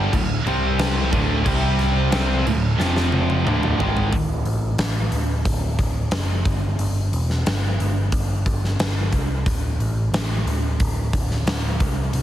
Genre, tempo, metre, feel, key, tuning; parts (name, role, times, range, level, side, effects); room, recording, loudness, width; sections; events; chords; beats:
hard rock; 90 BPM; 4/4; straight; A4 = 440 Hz
high-gain distorted guitar; riff; 0.0-4.1 s; D2 to C4; -24 LUFS; equal; distortion
scooped high-gain guitar; riff; 0.0-4.1 s; D2 to C4; -23 LUFS; right 1 dB; distortion
overdriven picked electric bass; bass; 0.0-12.2 s; D1 to C2; -22 LUFS; equal
huge arena drum kit; drums; 0.1-12.2 s; crash cymbal, hi-hat, kick drum, snare drum, toms; -23 LUFS; equal
light reverb; heavily compressed radio sound, multiband compression; -19 LUFS; side -12 dB against mid
0.0-4.1 A section; 4.1-12.2 B section
drum fill 2.8-4.1
0.5 C5; 1.1 D5; 1.5 C5; 2.1 D5; 2.8 F5; 3.5 D5; 4.1 D; 6.5 N.C.; 9.5 D5
0.13 0.80 | 1.46 2.12 2.79 3.45 | 4.12 4.79 5.45 6.12 | 6.79 7.45 8.12 8.79 | 9.46 10.13 10.79 11.46 | 12.13